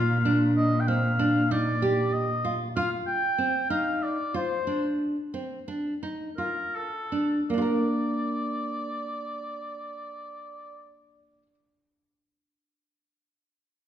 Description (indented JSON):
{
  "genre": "contemporary instrumental, chamber music in an uneven meter",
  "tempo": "157-192 BPM (eighths)",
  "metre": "7/8",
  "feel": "straight",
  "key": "Bb major",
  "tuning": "A4 = 440 Hz",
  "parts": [
    { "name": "warm oboe", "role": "melody", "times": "0.0-10.9 s", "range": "A4 to G5", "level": "-30 LUFS", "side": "left 1 dB", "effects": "none" },
    { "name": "nylon-string guitar", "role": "arpeggios", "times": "0.0-11.5 s", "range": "Bb3 to Bb4", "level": "-28 LUFS", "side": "right 1 dB", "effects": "none" },
    { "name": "dark cello", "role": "bass", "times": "0.0-2.7 s", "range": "Bb2", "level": "-27 LUFS", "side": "right 1 dB", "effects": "none" }
  ],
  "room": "wet recital hall reverb, RT60 1.4 s",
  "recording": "recorded in a church or concert hall",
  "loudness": "-24 LUFS",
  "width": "side -10 dB against mid",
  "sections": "0.0-7.5 A section; 7.5-10.1 B section",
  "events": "slowing down 2.8-7.5",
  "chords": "0.0 Ebsus2/Bb; 2.8 F5; 7.5 Bb"
}